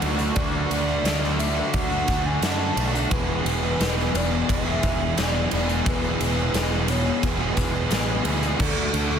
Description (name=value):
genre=rock, shoegaze and dream pop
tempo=87 BPM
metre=4/4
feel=straight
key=E mixolydian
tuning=A4 = 440 Hz
part: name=pure sine lead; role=melody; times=0.0-9.2 s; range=A4 to A5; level=-30 LUFS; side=equal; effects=chorus, tape echo
part: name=biting overdriven guitar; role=riff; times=0.0-9.2 s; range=E2 to G#4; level=-29 LUFS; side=left 10 dB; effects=wide subtle chorus
part: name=overdriven electric guitar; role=riff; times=0.0-9.2 s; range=E2 to G#4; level=-28 LUFS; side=right 9 dB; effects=reverse reverb
part: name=fuzz picked electric bass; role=bass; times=0.0-9.2 s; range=E1 to F#2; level=-27 LUFS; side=equal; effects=overdrive
part: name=big rock drum kit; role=drums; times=0.0-9.1 s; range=crash cymbal, kick drum, ride cymbal, snare drum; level=-25 LUFS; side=equal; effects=soft clipping on kick
part: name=tambourine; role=percussion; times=0.2-9.2 s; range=none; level=-39 LUFS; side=left 12 dB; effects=none
room=small room ambience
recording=dense, heavily limited modern master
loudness=-20 LUFS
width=side -8 dB against mid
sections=0.0-9.2 A section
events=none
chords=0.0 D; 3.1 E; 8.6 D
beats=| 0.36 1.04 1.73 2.42 | 3.11 3.80 4.48 5.17 | 5.86 6.54 7.23 7.91 | 8.60